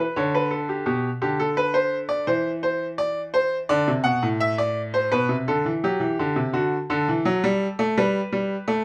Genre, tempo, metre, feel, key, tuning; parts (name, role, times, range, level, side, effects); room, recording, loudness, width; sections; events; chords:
classical, baroque-style two-part invention for grand piano; 84 BPM; 4/4; straight; G major; A4 = 440 Hz
bright baby grand piano; solo; 0.0-8.8 s; A2 to F#5; -23 LUFS; equal
little or no reverb; close, detailed microphones; -23 LUFS; mono
0.0-8.8 A section
0.0 D5; 0.9 G/B; 2.3 Cadd9/E; 3.7 D; 5.1 G/B; 6.5 D; 8.0 Gadd9